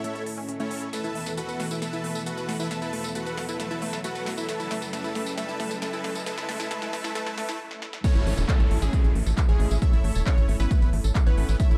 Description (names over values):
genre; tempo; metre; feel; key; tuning
uplifting trance; 135 BPM; 4/4; straight; A major; A4 = 440 Hz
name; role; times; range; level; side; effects
supersaw chords; melody; 0.0-11.8 s; G#3 to A5; -36 LUFS; equal; sidechain pumping, digital delay
lush unison pad; sustained chords; 0.0-11.8 s; E2 to E5; -39 LUFS; equal; chorus, sidechain pumping
unison pluck; arpeggios; 0.0-11.8 s; A3 to A5; -38 LUFS; equal; sidechain pumping, digital delay
big-room dance drum kit; drums; 0.0-11.8 s; crash cymbal, handclaps, hi-hat, snare drum, tambourine; -39 LUFS; equal; overdrive, sidechain pumping on hats, high-pass filter on hats, high-pass filter on snare, sidechain pumping on perc, high-pass filter on perc, sidechain pumping on cymbals, high-pass filter on cymbals
riser and downlifter; sound effects; 0.0-11.6 s; none; -42 LUFS; equal; none
plucky unison lead; second line; 8.0-11.8 s; G#4 to E5; -40 LUFS; equal; sidechain pumping, digital delay
electronic kick drum; drums; 8.0-11.7 s; none; -24 LUFS; equal; none
tight sequencer bass; bass; 8.2-11.8 s; E1 to A1; -27 LUFS; equal; sidechain pumping
room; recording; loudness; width
little or no reverb; dark, warm production, high-pass filter; -26 LUFS; mono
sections
0.0-8.0 A section; 8.0-11.8 B section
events
build-up 0.0-8.0; riser 0.0-7.6; filter sweep on synth pluck 0.0-8.0; drum fill 0.9-7.6, 7.7-8.0; stop 7.6-8.0; drop 8.0-11.8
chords
0.0 A; 0.9 Esus4; 4.5 F#m7; 8.0 A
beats
0.04 0.49 | 0.93 1.38 1.82 2.26 | 2.71 3.15 3.60 4.04 | 4.49 4.93 5.38 5.82 | 6.26 6.71 7.15 7.60 | 8.04 8.49 8.93 9.38 | 9.82 10.26 10.71 11.15 | 11.60